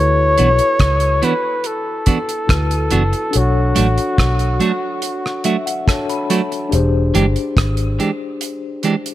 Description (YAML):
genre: lovers rock reggae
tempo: 71 BPM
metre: 4/4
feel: straight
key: D major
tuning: A4 = 439 Hz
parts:
  - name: warm flugelhorn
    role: melody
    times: 0.0-5.9 s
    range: F#4 to C#5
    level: -18 LUFS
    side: left 1 dB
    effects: tape echo
  - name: mellow tine electric piano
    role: accompaniment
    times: 0.0-9.1 s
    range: D4 to B5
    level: -23 LUFS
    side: left 4 dB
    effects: medium stereo tremolo
  - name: vintage muted fingered electric bass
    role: bass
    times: 0.0-8.0 s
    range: E1 to D2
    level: -16 LUFS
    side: equal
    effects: none
  - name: clean electric guitar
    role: stabs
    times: 0.4-8.9 s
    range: E3 to G4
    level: -19 LUFS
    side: right 4 dB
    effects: none
  - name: damped 70s drum kit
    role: drums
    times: 0.4-9.1 s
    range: hi-hat, kick drum, rim click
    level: -19 LUFS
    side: equal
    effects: none
room: light reverb, small room ambience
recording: none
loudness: -14 LUFS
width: side -14 dB against mid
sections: 0.0-9.1 A section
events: tine electric piano fill 5.0-6.7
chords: 0.0 D69; 3.3 Bm7; 6.7 E7alt